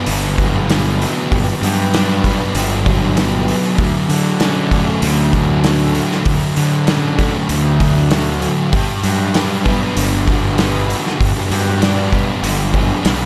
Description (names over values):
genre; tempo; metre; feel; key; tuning
rock, shoegaze and dream pop; 97 BPM; 4/4; straight; unclear; A4 = 441 Hz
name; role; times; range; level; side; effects
fuzz guitar; riff; 0.0-13.3 s; G2 to D4; -19 LUFS; equal; distortion, lush chorus
fuzz fingered electric bass; bass; 0.1-13.3 s; G1 to D3; -20 LUFS; equal; overdrive
loose indie drum kit; drums; 0.1-13.2 s; hi-hat, kick drum, snare drum; -21 LUFS; equal; none
room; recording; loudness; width
light reverb, studio ambience; none; -16 LUFS; mono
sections
0.0-13.3 A section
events
none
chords
0.0 Gmaj7; 3.8 Dmaj7; 8.7 Gmaj7